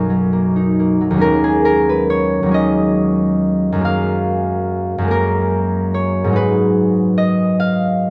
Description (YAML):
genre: classical, solo harp piece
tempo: 44-49 BPM (dotted quarters)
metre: 6/8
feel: rubato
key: Eb minor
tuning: A4 = 440 Hz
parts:
  - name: concert harp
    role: solo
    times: 0.0-8.1 s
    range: B1 to F#5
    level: -16 LUFS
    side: equal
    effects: none
room: moderate studio reverb, RT60 0.6 s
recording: dark, warm production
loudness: -16 LUFS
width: mono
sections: 0.0-1.2 A section; 1.2-8.1 B section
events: none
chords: 0.0 Bmaj7; 1.2 Ebm7; 3.8 Gbmaj9; 6.3 Abm7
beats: | 1.23 2.54 | 3.84 5.09 | 6.33 7.57